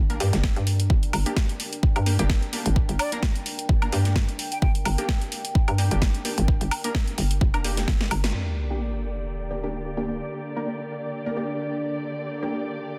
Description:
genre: bass house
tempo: 129 BPM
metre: 4/4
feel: swing 55% on 16ths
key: G minor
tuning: A4 = 440 Hz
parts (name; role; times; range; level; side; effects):
- hollow knocking FM bass; bass; 0.0-8.3 s; F1 to G2; -26 LUFS; equal; overdrive, sidechain pumping
- deep dark ambient pad; texture; 0.1-13.0 s; D4 to G5; -39 LUFS; equal; chorus, built-in reverb, sidechain pumping
- orchestra-hit-like synth stab; stabs; 0.1-12.5 s; Bb3 to Bb4; -35 LUFS; equal; built-in reverb, sidechain pumping, delay
- house drum kit; drums; 0.1-8.4 s; crash cymbal, hi-hat, snare drum, woodblock; -32 LUFS; equal; low-pass filter on hats, low-pass filter on snare, low-pass filter on perc, low-pass filter on cymbals, low-pass filter on room
- electronic kick drum; drums; 0.4-8.0 s; none; -24 LUFS; equal; none
- breathy bright concert flute; melody; 3.0-4.7 s; D5 to G5; -35 LUFS; equal; delay
- dark studio string section; sustained chords; 8.3-13.0 s; D3 to D5; -34 LUFS; equal; vintage 12-bit sampler grit, sidechain pumping, low-pass filter
- sub drop; sound effects; 8.3-10.2 s; none; -33 LUFS; equal; none
room: light reverb, digital ambience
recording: dense, heavily limited modern master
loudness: -25 LUFS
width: mono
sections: 0.0-8.3 A section; 8.3-13.0 B section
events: filter sweep on FM bass 0.0-8.3; drum fill 8.0-8.3; band accent 8.2; impact 8.3-10.2; filter sweep on string section 8.3-13.0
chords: 0.0 Gm

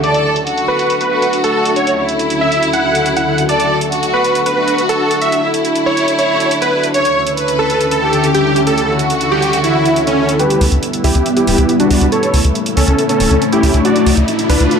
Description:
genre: uplifting trance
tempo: 139 BPM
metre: 4/4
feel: straight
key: D major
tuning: A4 = 440 Hz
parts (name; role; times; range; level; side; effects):
- dense compressed supersaw; melody; 0.0-14.8 s; C#4 to F#5; -16 LUFS; right 1 dB; low-pass filter, tape echo
- rich studio violin section; second line; 0.0-10.3 s; E4 to C#5; -17 LUFS; equal; ping-pong delay
- electronic hi-hat; drums; 0.0-14.8 s; none; -23 LUFS; right 3 dB; overdrive, low-pass filter on snare, low-pass filter on hats, low-pass filter on room
- downlifter, swell and riser; sound effects; 0.0, 9.7-14.8 s; none; -22 LUFS; equal; none
- tight sequencer bass; bass; 10.6-14.7 s; D1 to D2; -13 LUFS; equal; tube saturation
room: moderate lush hall reverb, RT60 1.8 s, digital ambience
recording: dark, warm production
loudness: -11 LUFS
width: side -6 dB against mid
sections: 0.0-10.4 A section; 10.4-14.8 B section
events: swell 9.7-10.4; build-up 10.4-14.8; riser 10.4-14.8; filter sweep on supersaw synth 10.4-14.8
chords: 0.0 Dadd9; 1.8 F#m7/D; 3.5 Dadd9; 6.9 A/D; 10.4 Em/D; 12.1 A/D; 13.8 Dadd9

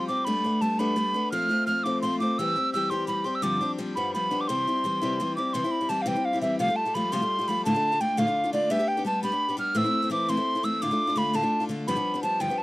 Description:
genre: celtic folk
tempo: 114 BPM (dotted quarters)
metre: 6/8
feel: straight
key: C major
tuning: A4 = 440 Hz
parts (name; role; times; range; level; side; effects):
- hollow wooden whistle; melody; 0.0-12.6 s; D5 to F6; -26 LUFS; right 1 dB; none
- picked steel-string acoustic guitar; accompaniment; 0.0-12.6 s; D2 to G4; -28 LUFS; left 2 dB; none
room: light reverb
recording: dry, close 1970s-style studio recording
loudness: -24 LUFS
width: side -18 dB against mid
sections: 0.0-5.5 A section; 5.5-12.6 B section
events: none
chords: 0.3 Gadd9; 1.3 F; 2.4 C/E; 3.4 G7sus4; 4.0 G7; 4.5 C; 6.6 Fadd9/C; 7.6 Dm; 8.7 G; 9.8 Am; 10.8 Dm/A; 11.9 G7

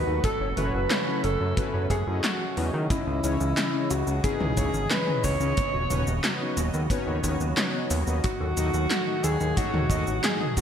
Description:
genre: synthwave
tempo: 90 BPM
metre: 4/4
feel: straight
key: C# minor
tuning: A4 = 440 Hz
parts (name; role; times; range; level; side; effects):
- mellow tenor saxophone; melody; 0.0-10.6 s; E4 to C#5; -31 LUFS; equal; ping-pong delay
- soft synth bell; second line; 0.0-10.6 s; E4 to C#5; -35 LUFS; right 1 dB; chorus, phaser
- chorused pulse-width pad; sustained chords; 0.0-10.6 s; A2 to D#5; -32 LUFS; equal; sidechain pumping
- analog synth brass; stabs; 0.0-10.6 s; A3 to F#5; -33 LUFS; left 4 dB; chorus, ping-pong delay
- fat analog bass; bass; 0.0-10.6 s; D#1 to D#3; -27 LUFS; equal; tube saturation
- mellow electric guitar; riff; 0.1-10.6 s; B3 to F#5; -38 LUFS; left 3 dB; none
- 80s electronic pad drums; drums; 0.2-10.6 s; handclaps, hi-hat, shaker, snare drum, toms; -29 LUFS; equal; gated reverb on snare and toms, overdrive, studio reverb
- kick drum; drums; 0.2-10.6 s; none; -30 LUFS; equal; studio reverb
room: moderate lush hall reverb, RT60 2.1 s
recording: bright 1980s-style digital production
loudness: -23 LUFS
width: side -8 dB against mid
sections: 0.0-10.6 A section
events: none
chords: 0.2 F#m7; 2.9 C#madd9; 5.6 Badd9/D#; 8.2 D#dim

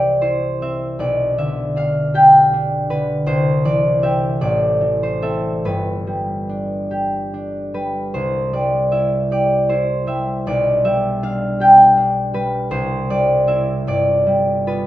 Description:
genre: classical, solo harp piece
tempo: 47-54 BPM (dotted quarters)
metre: 6/8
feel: rubato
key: C major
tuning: A4 = 441 Hz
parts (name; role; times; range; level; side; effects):
- concert harp; solo; 0.0-14.9 s; G1 to G5; -15 LUFS; equal; none
room: moderate recital hall reverb, RT60 1.4 s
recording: close, detailed microphones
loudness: -15 LUFS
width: side -14 dB against mid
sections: 0.0-14.9 A section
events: none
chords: 0.0 C; 1.0 G/B; 3.3 C; 4.4 Am; 5.6 G; 8.1 C; 10.5 G/B; 12.7 C; 13.9 G7

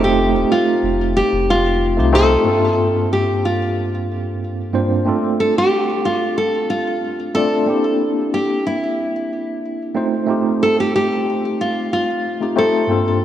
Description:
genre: sunset chillout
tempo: 92 BPM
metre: 4/4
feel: straight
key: G minor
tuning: A4 = 440 Hz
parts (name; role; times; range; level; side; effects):
- nylon-string guitar; melody; 0.0-13.2 s; E4 to A4; -18 LUFS; equal; ping-pong delay
- bright tine electric piano; accompaniment; 0.0-13.2 s; G2 to D5; -19 LUFS; moving between left 3 dB and right 4 dB; fast stereo tremolo, auto-pan
- warm sub bass; bass; 0.0-2.4 s; Eb1 to C2; -20 LUFS; equal; none
room: wet lush hall reverb, RT60 2.8 s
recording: worn, warbling old tape, cassette tape, warbly pitch drift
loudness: -15 LUFS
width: side -11 dB against mid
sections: 0.0-2.5 A section; 2.5-13.2 B section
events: none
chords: 0.0 F9; 2.5 Gm11; 5.1 Dm7; 7.7 C9; 10.0 F9

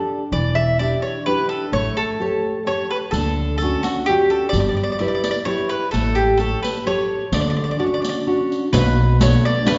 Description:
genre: italian folk, Italian serenade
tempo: 128 BPM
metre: 3/4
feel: straight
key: D major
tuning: A4 = 440 Hz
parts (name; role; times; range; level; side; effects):
- nylon-string guitar; accompaniment; 0.0-9.8 s; B2 to C#5; -25 LUFS; equal; none
- mandolin; melody; 0.3-9.8 s; F#4 to E5; -24 LUFS; equal; none
- upright bass; bass; 0.3-9.3 s; E1 to D2; -24 LUFS; equal; none
- riq; percussion; 3.1-9.8 s; none; -28 LUFS; equal; none
room: wet recital hall reverb, RT60 1.6 s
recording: heard from further back in the room, nothing above 7.5 kHz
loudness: -20 LUFS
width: mono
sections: 0.0-8.7 A section; 8.7-9.8 B section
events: none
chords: 0.3 Em7; 1.7 A7; 3.1 Dmaj7; 4.5 G6; 5.9 A7; 7.3 Dmaj7; 8.7 Bm7

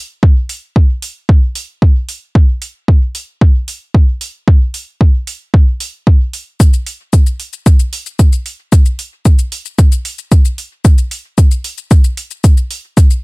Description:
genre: techno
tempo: 113 BPM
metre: 4/4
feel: straight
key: none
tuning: none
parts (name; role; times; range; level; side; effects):
- electronic kick drum; drums; 0.2-13.1 s; none; -8 LUFS; equal; overdrive
- electronic hi-hat and shaker; drums; 0.5-13.2 s; none; -24 LUFS; left 1 dB; overdrive
room: little or no reverb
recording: none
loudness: -10 LUFS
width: side -27 dB against mid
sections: 0.0-6.6 A section; 6.6-13.2 A section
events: none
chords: none

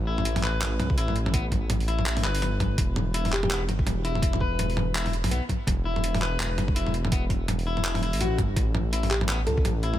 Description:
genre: half-time drum and bass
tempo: 166 BPM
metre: 4/4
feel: swing 59% on 16ths, half-time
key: E dorian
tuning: A4 = 444 Hz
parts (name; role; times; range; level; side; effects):
- dark detuned saw bass; bass; 0.0-10.0 s; E1 to C#2; -27 LUFS; equal; none
- electric guitar at the edge of break-up; arpeggios; 0.1-10.0 s; B3 to B4; -32 LUFS; left 4 dB; digital delay
- boom bap sampler-style drum kit; drums; 0.2-10.0 s; handclaps, hi-hat, toms; -29 LUFS; right 1 dB; overdrive
- electronic kick drum; drums; 0.9-9.6 s; none; -26 LUFS; equal; overdrive
- bell-like FM electric piano; melody; 3.3-3.7, 9.1-9.8 s; G4 to A4; -33 LUFS; equal; chorus, vintage 12-bit sampler grit, tape echo
room: digital ambience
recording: none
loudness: -23 LUFS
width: side -12 dB against mid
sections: 0.0-10.0 A section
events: none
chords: 0.0 A5; 2.8 E5; 8.6 A5

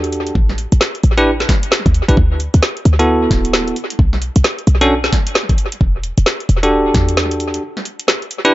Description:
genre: UK garage, two-step garage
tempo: 132 BPM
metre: 4/4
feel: swing 62% on 16ths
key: unclear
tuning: A4 = 440 Hz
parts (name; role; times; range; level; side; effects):
- bell-like tine electric piano; stabs; 0.0-8.5 s; B3 to B4; -16 LUFS; equal; vintage 12-bit sampler grit, dub echo
- short 808-style bass; bass; 0.0-7.6 s; D1 to E2; -15 LUFS; equal; none
- garage drum kit; drums; 0.0-8.5 s; hi-hat, snare drum; -18 LUFS; equal; analog delay
- electronic kick drum; drums; 0.4-7.1 s; none; -15 LUFS; equal; none
room: light reverb, digital ambience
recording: echo-heavy mix, nothing above 7.7 kHz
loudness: -12 LUFS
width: side -16 dB against mid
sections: 0.0-8.5 A section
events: break 7.6-8.5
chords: 0.4 Asus4; 2.2 D6; 3.8 N.C.; 5.6 Em11; 7.6 Dsus24

